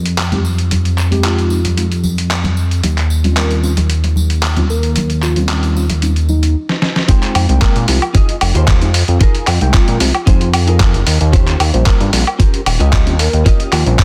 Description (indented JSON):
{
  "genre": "nu-disco, nu disco",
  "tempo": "113 BPM",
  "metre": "4/4",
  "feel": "straight",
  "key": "F minor",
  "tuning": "A4 = 441 Hz",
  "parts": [
    { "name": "fat analog bass", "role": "bass", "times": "0.0-14.0 s", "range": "Eb1 to Bb2", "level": "-16 LUFS", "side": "equal", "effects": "tube saturation" },
    { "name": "dusty soul sampler-style drum kit", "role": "drums", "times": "0.1-14.0 s", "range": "handclaps, hi-hat, snare drum, woodblock", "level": "-21 LUFS", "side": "equal", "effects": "overdrive" },
    { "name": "tambourine and congas", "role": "percussion", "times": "0.1-6.5 s", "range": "none", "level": "-25 LUFS", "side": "equal", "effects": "none" },
    { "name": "mellow tine electric piano", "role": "accompaniment", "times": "0.3-14.0 s", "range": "G3 to G5", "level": "-24 LUFS", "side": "equal", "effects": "analog chorus, analog delay" },
    { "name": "soft octave-layered synth lead", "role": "melody", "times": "1.2-13.9 s", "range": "Eb4 to Bb4", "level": "-27 LUFS", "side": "equal", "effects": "chorus, analog delay" },
    { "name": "direct-recorded clean electric guitar", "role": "riff", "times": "7.1-14.0 s", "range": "Db4 to Eb5", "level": "-26 LUFS", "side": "equal", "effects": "ensemble chorus, analog delay" },
    { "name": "electronic kick drum", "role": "drums", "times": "7.1-14.0 s", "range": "none", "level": "-14 LUFS", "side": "equal", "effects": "overdrive" }
  ],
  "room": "digital ambience",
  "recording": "dense, heavily limited modern master",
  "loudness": "-14 LUFS",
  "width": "mono",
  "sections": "0.0-7.1 A section; 7.1-14.0 B section",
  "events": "stop 6.6-7.1; drum fill 6.7-7.1; drop 7.1-14.0",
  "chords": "0.0 Fm7; 2.8 Eb13; 7.1 Fm7; 11.3 Eb13"
}